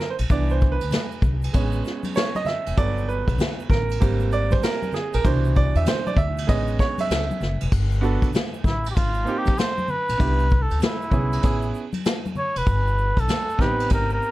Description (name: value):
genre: hip hop, jazz-hop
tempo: 97 BPM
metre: 4/4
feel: swing 65% on 16ths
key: unclear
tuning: A4 = 440 Hz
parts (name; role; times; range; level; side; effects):
- bright grand piano; accompaniment; 0.0-14.3 s; B2 to E5; -26 LUFS; right 5 dB; none
- vintage brush drum kit; drums; 0.0-14.1 s; crash cymbal, hi-hat, kick drum, ride cymbal, snare drum; -24 LUFS; left 1 dB; none
- upright bass; bass; 0.2-14.2 s; E1 to E2; -23 LUFS; equal; none
- egg shaker and congas; percussion; 0.2-14.3 s; none; -32 LUFS; left 2 dB; none
- trumpet with cup mute; melody; 8.7-14.3 s; E4 to C#5; -25 LUFS; equal; none
room: little or no reverb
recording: dark, warm production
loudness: -20 LUFS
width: side -16 dB against mid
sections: 0.0-7.7 A section; 7.7-14.3 A section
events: grand piano solo 0.0-7.7; muted trumpet solo 7.7-14.3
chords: 0.3 Cmaj9; 1.5 Amaj9; 2.8 Gmaj9; 4.0 Abmaj9; 5.2 Cmaj9; 6.5 Amaj9; 7.7 Gmaj9; 9.0 Abmaj9; 10.2 Cmaj9; 11.4 Amaj9; 12.7 Gadd9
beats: | 0.30 0.92 1.54 2.16 | 2.78 3.40 4.01 4.63 | 5.25 5.87 6.49 7.11 | 7.72 8.34 8.96 9.58 | 10.20 10.82 11.44 12.05 | 12.67 13.29 13.91